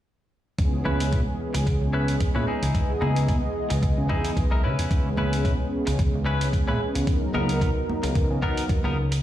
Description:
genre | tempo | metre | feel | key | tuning
nu-disco, nu disco | 111 BPM | 4/4 | swing 55% on 16ths | C# dorian | A4 = 440 Hz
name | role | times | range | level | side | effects
warm analog pad | accompaniment | 0.6-8.7 s | E3 to D#5 | -28 LUFS | right 1 dB | chorus, sidechain pumping, tape echo
fat analog bass | bass | 0.6-9.2 s | B1 to C#3 | -25 LUFS | equal | tube saturation, sidechain pumping
electronic hi-hat | drums | 0.6-9.2 s | none | -36 LUFS | right 2 dB | none
electronic kick drum | drums | 0.6-8.8 s | none | -24 LUFS | equal | none
direct-recorded clean electric guitar | riff | 0.9-9.2 s | B3 to B4 | -31 LUFS | left 2 dB | wide subtle chorus, low-pass filter, tape echo
congas | percussion | 0.9-8.9 s | none | -34 LUFS | right 2 dB | none
room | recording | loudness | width
light reverb | played on a big sound system in a bare room, large studio reverb | -22 LUFS | side -12 dB against mid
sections
0.6-9.2 A section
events
filter sweep on clean electric guitar 0.6-9.2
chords
0.6 C#m7; 2.5 Emaj7/C#; 4.6 C#m7; 7.1 Bmaj7/C#

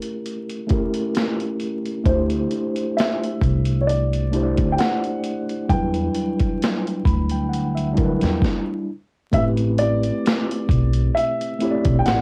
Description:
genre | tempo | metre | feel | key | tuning
lo-fi hip hop | 66 BPM | 4/4 | swing 55% on 16ths | A dorian | A4 = 440 Hz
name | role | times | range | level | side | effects
dark upright piano | melody | 0.0-12.2 s | Bb4 to G5 | -27 LUFS | equal | low-pass filter
mellow tine electric piano | accompaniment | 0.0-12.2 s | F#3 to B5 | -26 LUFS | equal | low-pass filter, cassette tape
boom bap sampler-style drum kit | drums | 0.0-12.2 s | hi-hat, kick drum, snare drum | -25 LUFS | equal | cassette tape
upright bass | bass | 2.1-12.2 s | A1 to E2 | -24 LUFS | equal | transformer saturation
room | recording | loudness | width
light reverb | home recording on cassette, vinyl crackle | -21 LUFS | mono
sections
0.0-9.3 A section; 9.3-12.2 B section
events
filter sweep 0.0-9.3; stop 8.4-9.3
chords
0.0 A7b9; 2.1 D7sus4; 5.7 Em9; 9.3 Am9

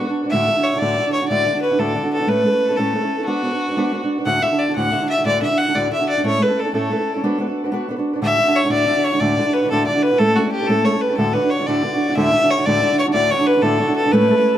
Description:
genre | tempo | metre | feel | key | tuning
celtic folk | 122 BPM (dotted quarters) | 12/8 | straight | D major | A4 = 440 Hz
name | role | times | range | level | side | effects
rich fiddle | melody | 0.0-14.6 s | F#4 to F#5 | -18 LUFS | left 1 dB | plate reverb, tape echo
fingerpicked steel-string acoustic guitar | accompaniment | 0.0-14.6 s | D2 to B4 | -19 LUFS | right 1 dB | none
room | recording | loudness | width
wet small room reverb, RT60 0.5 s | none | -16 LUFS | side -11 dB against mid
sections
0.0-12.2 A section; 12.2-14.6 A section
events
none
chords
0.3 Dadd9; 2.3 A; 3.3 Bm; 4.3 Dadd9; 6.2 A; 7.2 Bm; 8.2 Dadd9; 10.2 A; 11.2 Dadd9

